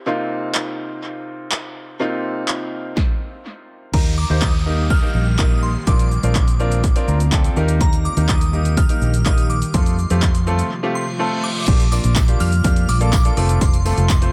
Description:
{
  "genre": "dance-pop",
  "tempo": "124 BPM",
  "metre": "4/4",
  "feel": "straight",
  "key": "Bb major",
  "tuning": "A4 = 440 Hz",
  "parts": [
    { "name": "clear concert grand piano", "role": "accompaniment", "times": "0.0-14.3 s", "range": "C3 to Bb5", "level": "-27 LUFS", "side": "equal", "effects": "sidechain pumping, dub echo" },
    { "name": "punchy analog drum machine", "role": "drums", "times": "0.5-14.3 s", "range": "crash cymbal, handclaps, hi-hat, kick drum, shaker, snare drum", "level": "-21 LUFS", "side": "equal", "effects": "none" },
    { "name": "shimmering bell with halo", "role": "melody", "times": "3.9-14.3 s", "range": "Bb5 to F6", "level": "-30 LUFS", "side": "equal", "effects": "ensemble chorus, dub echo" },
    { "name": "ethereal airy pad", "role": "sustained chords", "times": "4.8-14.3 s", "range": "C3 to G4", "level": "-32 LUFS", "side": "equal", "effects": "none" },
    { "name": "vintage muted fingered electric bass", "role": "bass", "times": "3.9-14.3 s", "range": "F1 to F2", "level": "-20 LUFS", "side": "equal", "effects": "sidechain pumping" },
    { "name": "downlifter and reverse cymbal", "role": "sound effects", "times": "4.0-7.8, 11.0-11.7 s", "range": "none", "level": "-34 LUFS", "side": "equal", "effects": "none" },
    { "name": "tambourine", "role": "percussion", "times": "11.9-14.2 s", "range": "none", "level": "-39 LUFS", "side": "equal", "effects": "none" }
  ],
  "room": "light reverb, digital ambience",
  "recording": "echo-heavy mix",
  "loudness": "-18 LUFS",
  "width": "mono",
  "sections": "0.0-3.9 A section; 3.9-11.7 B section; 11.7-14.3 C section",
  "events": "grand piano fill 6.8-7.8; break 10.7-11.7; reverse cymbal 11.0-11.7",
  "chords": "0.1 F7sus4/C; 3.9 Eb; 5.9 Bbadd9; 7.6 Eb; 9.7 F; 11.7 Bb6; 13.4 F"
}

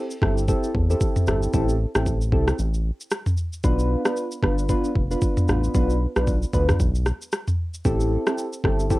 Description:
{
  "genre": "afrobeats",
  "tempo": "114 BPM",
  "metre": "4/4",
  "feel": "swing 58% on 16ths",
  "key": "A minor",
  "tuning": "A4 = 440 Hz",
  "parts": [
    { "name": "soft electric-piano-like synth keys", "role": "accompaniment", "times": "0.0-9.0 s", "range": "B3 to B4", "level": "-25 LUFS", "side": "equal", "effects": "chorus, phaser, cassette tape" },
    { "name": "afro-pop drum kit", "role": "drums", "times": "0.1-9.0 s", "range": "kick drum, rim click, shaker, toms", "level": "-23 LUFS", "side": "equal", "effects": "overdrive, cassette tape" },
    { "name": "round analog bass", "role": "bass", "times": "0.2-9.0 s", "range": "F1 to E2", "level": "-23 LUFS", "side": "equal", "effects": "none" }
  ],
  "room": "light reverb",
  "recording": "home recording on cassette",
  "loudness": "-20 LUFS",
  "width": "side -19 dB against mid",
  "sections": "0.0-9.0 A section",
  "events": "none",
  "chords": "0.0 Am7; 3.6 Bdim; 7.9 Am7"
}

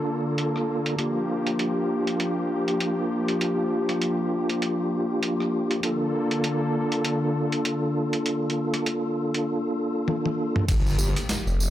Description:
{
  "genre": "glitch hop",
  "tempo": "99 BPM",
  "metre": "4/4",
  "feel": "swing 58% on 16ths",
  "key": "G minor",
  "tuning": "A4 = 440 Hz",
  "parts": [
    { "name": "warm analog pad", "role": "sustained chords", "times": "0.0-11.7 s", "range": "D3 to A4", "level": "-29 LUFS", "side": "left 1 dB", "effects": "chorus, sidechain pumping" },
    { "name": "mellow tonewheel organ", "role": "stabs", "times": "0.0-11.1 s", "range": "Bb3 to A4", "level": "-25 LUFS", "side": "equal", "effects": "chorus vibrato, fast rotary speaker, sidechain pumping, ping-pong delay" },
    { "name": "boom bap sampler-style drum kit", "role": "drums", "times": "0.4-11.4 s", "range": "crash cymbal, hi-hat, rim click, snare drum, toms", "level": "-29 LUFS", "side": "equal", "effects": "overdrive, low-pass filter on hats, low-pass filter on snare, low-pass filter on toms, low-pass filter on cymbals, low-pass filter on room" },
    { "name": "phased detuned saw bass", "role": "bass", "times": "10.7-11.7 s", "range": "F1 to G1", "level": "-24 LUFS", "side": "equal", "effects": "phaser" },
    { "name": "electronic kick drum", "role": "drums", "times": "10.7-10.8 s", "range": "none", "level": "-24 LUFS", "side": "equal", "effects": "overdrive" },
    { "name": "tambourine", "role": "percussion", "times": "10.7-11.7 s", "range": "none", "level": "-34 LUFS", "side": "right 2 dB", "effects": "none" },
    { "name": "impact", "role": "sound effects", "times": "10.7-11.7 s", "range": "none", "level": "-32 LUFS", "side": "equal", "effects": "none" }
  ],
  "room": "light reverb, digital ambience",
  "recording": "none",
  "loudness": "-23 LUFS",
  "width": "side -12 dB against mid",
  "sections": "0.0-10.7 A section; 10.7-11.7 B section",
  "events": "drum fill 10.1-10.7; drop 10.7-11.7; impact 10.7-11.7",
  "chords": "0.0 Bbmaj7; 1.0 Gm7; 5.8 Bbmaj7; 10.7 Gm7"
}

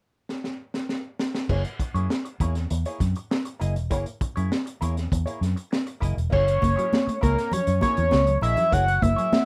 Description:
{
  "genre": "funk",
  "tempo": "100 BPM",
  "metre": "4/4",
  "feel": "straight",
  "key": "F# mixolydian",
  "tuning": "A4 = 440 Hz",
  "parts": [
    { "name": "crunchy breakbeat drum kit", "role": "drums", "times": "0.3-9.5 s", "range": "crash cymbal, hi-hat, kick drum, snare drum", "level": "-30 LUFS", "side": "equal", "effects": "none" },
    { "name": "vintage hollow-body jazz guitar", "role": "accompaniment", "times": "1.5-9.3 s", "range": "A#3 to D#5", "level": "-36 LUFS", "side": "equal", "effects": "wah" },
    { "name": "vintage muted fingered electric bass", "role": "bass", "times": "1.5-9.1 s", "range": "E1 to F#2", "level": "-27 LUFS", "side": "equal", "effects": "none" },
    { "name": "fat analog lead", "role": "melody", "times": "6.3-9.5 s", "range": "A#4 to F#5", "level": "-25 LUFS", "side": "equal", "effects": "chorus, analog delay" },
    { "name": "mellow electric guitar", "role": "riff", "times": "6.5-9.4 s", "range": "E3 to A#3", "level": "-34 LUFS", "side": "equal", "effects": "phaser" },
    { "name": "congas", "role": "percussion", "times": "6.6-9.5 s", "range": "none", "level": "-31 LUFS", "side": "equal", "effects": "none" }
  ],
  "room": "little or no reverb",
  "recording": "rough home demo mix",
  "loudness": "-25 LUFS",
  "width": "mono",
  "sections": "0.0-1.5 A section; 1.5-6.3 B section; 6.3-9.5 C section",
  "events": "drum fill 0.3-1.5",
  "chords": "0.0 N.C.; 1.5 F#9"
}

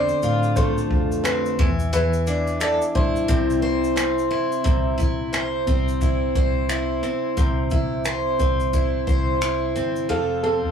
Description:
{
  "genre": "acoustic pop",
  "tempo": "88 BPM",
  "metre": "4/4",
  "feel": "swing 60% on 16ths",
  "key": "C major",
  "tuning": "A4 = 441 Hz",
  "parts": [
    { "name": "clear upright piano", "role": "melody", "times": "0.0-3.9, 10.1-10.7 s", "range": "A4 to D5", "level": "-25 LUFS", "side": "equal", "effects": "none" },
    { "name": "picked twelve-string acoustic guitar", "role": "accompaniment", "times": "0.0-10.7 s", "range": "C3 to C5", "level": "-22 LUFS", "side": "equal", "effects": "none" },
    { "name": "vintage muted fingered electric bass", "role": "bass", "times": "0.0-10.7 s", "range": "F1 to A2", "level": "-27 LUFS", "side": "left 1 dB", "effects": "none" },
    { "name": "jazz brush drum kit", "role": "drums", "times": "0.1-10.1 s", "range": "finger snaps, kick drum, shaker", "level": "-23 LUFS", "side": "equal", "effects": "none" },
    { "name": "group handclap", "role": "percussion", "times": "1.2-4.2 s", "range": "none", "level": "-37 LUFS", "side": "right 2 dB", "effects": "none" }
  ],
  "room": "moderate studio reverb, RT60 0.5 s",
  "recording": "rough rehearsal-room recording, tube saturation, small room ambience",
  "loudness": "-19 LUFS",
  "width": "side -7 dB against mid",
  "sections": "0.0-4.7 A section; 4.7-10.1 B section",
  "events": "none",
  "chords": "0.0 Dm7; 1.6 Em7; 3.3 C; 10.1 F"
}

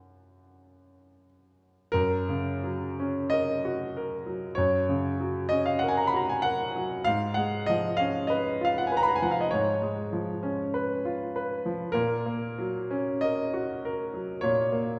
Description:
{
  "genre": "classical, romantic nocturne for solo piano",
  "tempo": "42-51 BPM",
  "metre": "4/4",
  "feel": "rubato",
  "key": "F# major",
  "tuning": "A4 = 440 Hz",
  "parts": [
    { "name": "clear grand piano", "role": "solo", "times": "0.0-15.0 s", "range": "F#2 to B5", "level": "-28 LUFS", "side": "equal", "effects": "none" }
  ],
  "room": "wet scoring stage reverb, RT60 1.6 s",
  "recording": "dark, warm production",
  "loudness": "-28 LUFS",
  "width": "mono",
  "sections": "0.0-1.9 A section; 1.9-15.0 A section",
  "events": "none",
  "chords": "0.0 F#; 7.1 C#7/G#; 12.0 F#/A#"
}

